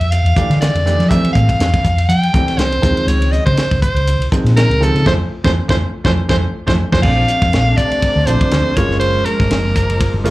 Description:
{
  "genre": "electric jazz fusion",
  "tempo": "121 BPM",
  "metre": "4/4",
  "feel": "swing 56% on 16ths",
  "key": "F major",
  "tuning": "A4 = 440 Hz",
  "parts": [
    { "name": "edgy soprano saxophone", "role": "melody", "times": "0.0-10.2 s", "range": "A4 to G5", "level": "-18 LUFS", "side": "equal", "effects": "slapback echo, plate reverb" },
    { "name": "hollow-body short-scale fingered electric bass", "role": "bass", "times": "0.0-10.3 s", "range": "Gb1 to F3", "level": "-15 LUFS", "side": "equal", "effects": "none" },
    { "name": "tight funk drum kit", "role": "drums", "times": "0.0-10.3 s", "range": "crash cymbal, hi-hat, kick drum, ride cymbal, snare drum", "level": "-18 LUFS", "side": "equal", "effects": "none" },
    { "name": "bright baby grand piano", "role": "accompaniment", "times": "0.4-10.3 s", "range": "Eb3 to F4", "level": "-20 LUFS", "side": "right 1 dB", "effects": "plate reverb, slapback echo" },
    { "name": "muted studio string section", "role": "sustained chords", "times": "7.0-10.3 s", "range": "C3 to D4", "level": "-23 LUFS", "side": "equal", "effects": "plate reverb" }
  ],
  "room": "light reverb",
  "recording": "live gig heard through the venue's PA, club reverb",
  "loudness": "-12 LUFS",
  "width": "side -18 dB against mid",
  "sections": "0.0-7.0 A section; 7.0-10.3 B section",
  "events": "band accent 5.1-7.0; drum fill 6.5-7.0",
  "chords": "0.0 Fmaj9; 2.8 Dbmaj9; 5.1 Fmaj7; 7.0 Bbmaj9; 8.8 Gbmaj9"
}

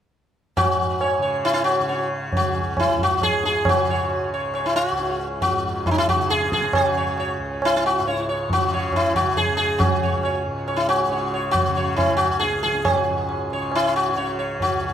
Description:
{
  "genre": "indian classical, Hindustani",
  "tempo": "137 BPM",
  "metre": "7/4",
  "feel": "straight",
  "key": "unclear",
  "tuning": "A4 = 439 Hz",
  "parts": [
    { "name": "sitar", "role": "melody", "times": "0.6-14.9 s", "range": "D#4 to C#5", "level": "-21 LUFS", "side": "left 1 dB", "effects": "tape echo" },
    { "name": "tanpura", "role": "drone", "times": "0.6-14.9 s", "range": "C#2 to C#3", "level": "-30 LUFS", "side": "equal", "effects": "none" },
    { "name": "tabla", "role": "percussion", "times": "0.6-14.9 s", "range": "none", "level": "-24 LUFS", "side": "right 1 dB", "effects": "none" }
  ],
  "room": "light reverb",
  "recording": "close, detailed microphones",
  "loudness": "-19 LUFS",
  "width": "side -9 dB against mid",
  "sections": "0.6-14.9 A section",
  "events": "none",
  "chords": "none"
}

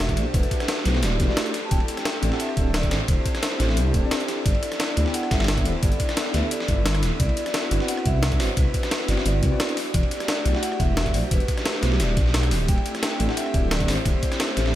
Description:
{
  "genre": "liquid drum and bass",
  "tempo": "175 BPM",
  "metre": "4/4",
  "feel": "straight",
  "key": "unclear",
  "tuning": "A4 = 444 Hz",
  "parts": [
    { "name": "vibraphone with medium mallets", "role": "melody", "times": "0.0-14.8 s", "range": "B4 to A5", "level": "-32 LUFS", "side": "left 1 dB", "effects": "diffuse ambient delay" },
    { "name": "airy breathy pad", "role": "sustained chords", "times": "0.0-14.8 s", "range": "A3 to A4", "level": "-32 LUFS", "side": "equal", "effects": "chorus, vintage 12-bit sampler grit, sidechain pumping" },
    { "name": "dark detuned saw bass", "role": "bass", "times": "0.0-14.8 s", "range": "D1 to D2", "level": "-23 LUFS", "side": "equal", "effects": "none" },
    { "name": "breakbeat sampler-style drum kit", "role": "drums", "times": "0.0-14.6 s", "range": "hi-hat, rim click, snare drum", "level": "-29 LUFS", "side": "left 1 dB", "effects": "none" },
    { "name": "dusty soul sampler-style drum kit", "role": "drums", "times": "0.0-14.7 s", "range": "ride cymbal, snare drum", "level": "-30 LUFS", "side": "right 1 dB", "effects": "high-pass filter on snare, high-pass filter on cymbals, high-pass filter on room" },
    { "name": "electronic kick drum", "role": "drums", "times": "0.1-14.3 s", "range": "none", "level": "-23 LUFS", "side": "equal", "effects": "none" },
    { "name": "mellow tine electric piano", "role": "accompaniment", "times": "0.2-14.8 s", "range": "A3 to G5", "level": "-31 LUFS", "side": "equal", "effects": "medium stereo tremolo, diffuse ambient delay" }
  ],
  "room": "light reverb, digital ambience",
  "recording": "none",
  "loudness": "-20 LUFS",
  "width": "side -13 dB against mid",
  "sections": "0.0-14.8 A section",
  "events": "none",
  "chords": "0.0 Em11; 1.5 D7sus4; 4.5 G69; 7.2 Cmaj9#11; 9.8 Em11; 12.5 D7sus4"
}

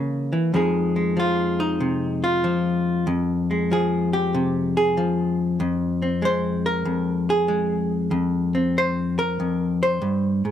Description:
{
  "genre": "solo jazz",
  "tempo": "95 BPM",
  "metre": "4/4",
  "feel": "swing 66% on 8ths",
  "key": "F minor",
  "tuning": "A4 = 441 Hz",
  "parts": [
    { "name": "vintage hollow-body jazz guitar", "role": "solo", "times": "0.0-10.5 s", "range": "F2 to C5", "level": "-20 LUFS", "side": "left 1 dB", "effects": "none" }
  ],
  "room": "little or no reverb",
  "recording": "close, detailed microphones",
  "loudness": "-20 LUFS",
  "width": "side -10 dB against mid",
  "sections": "0.5-10.5 A section",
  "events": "hollow-body jazz guitar solo 0.5-10.5",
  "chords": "0.0 C7 (rootless); 0.5 Fm7"
}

